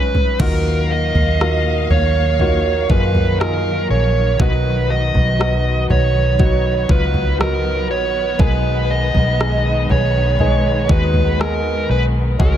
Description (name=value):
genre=pop ballad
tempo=60 BPM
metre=4/4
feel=straight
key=unclear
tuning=A4 = 441 Hz
part: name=dark smooth lead guitar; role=melody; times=0.0-12.6 s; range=A#4 to D#5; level=-20 LUFS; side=right 4 dB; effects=overdrive, tape echo
part: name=clear concert grand piano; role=accompaniment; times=0.0-12.6 s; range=C#2 to G#4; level=-23 LUFS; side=left 2 dB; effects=tape echo
part: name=pop drum kit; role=drums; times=0.1-12.6 s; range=crash cymbal, kick drum, rim click, toms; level=-19 LUFS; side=equal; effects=none
part: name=warm studio string section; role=sustained chords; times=0.4-12.6 s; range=A#2 to E#5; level=-26 LUFS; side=left 2 dB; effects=none
part: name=vintage muted fingered electric bass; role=bass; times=0.4-12.6 s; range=A#1 to F#2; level=-18 LUFS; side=equal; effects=none
room=little or no reverb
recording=echo-heavy mix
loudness=-14 LUFS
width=side -10 dB against mid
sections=0.4-12.6 A section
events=drum fill 0.0-0.4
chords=0.4 D#madd9; 4.4 B; 8.4 G#m/B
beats=| 0.40 1.40 2.40 3.40 | 4.40 5.40 6.40 7.40 | 8.40 9.40 10.40 11.40 | 12.40